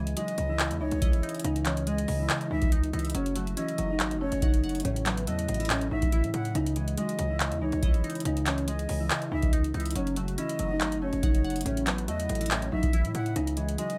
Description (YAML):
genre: hip hop, trap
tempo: 141 BPM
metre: 4/4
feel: half-time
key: C# minor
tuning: A4 = 440 Hz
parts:
  - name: mellow electric guitar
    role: melody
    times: 0.0-14.0 s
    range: E3 to D#5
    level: -35 LUFS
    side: equal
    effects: analog chorus, low-pass filter, analog delay
  - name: glassy wavetable pluck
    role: accompaniment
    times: 0.0-14.0 s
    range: A2 to F#5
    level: -38 LUFS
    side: equal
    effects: chorus, low-pass filter
  - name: hollow soft pad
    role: sustained chords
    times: 0.0-14.0 s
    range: C#3 to D#5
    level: -42 LUFS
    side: equal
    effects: chorus
  - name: distorted 808-style bass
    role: bass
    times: 0.0-13.8 s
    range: F#1 to A2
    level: -35 LUFS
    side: equal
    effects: distortion
  - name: booming analog drum machine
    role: drums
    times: 0.1-14.0 s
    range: handclaps, hi-hat, kick drum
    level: -31 LUFS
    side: equal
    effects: none
  - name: breathy bright concert flute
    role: second line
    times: 0.2-14.0 s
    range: C#5 to F#5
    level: -39 LUFS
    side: equal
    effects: analog delay
room: moderate studio reverb, RT60 0.7 s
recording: none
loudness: -28 LUFS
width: mono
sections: 0.0-13.4 A section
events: none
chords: 0.0 C#madd9; 3.1 F#m; 4.8 A6; 6.6 C#madd9; 10.0 F#m; 11.7 A6; 13.4 C#madd9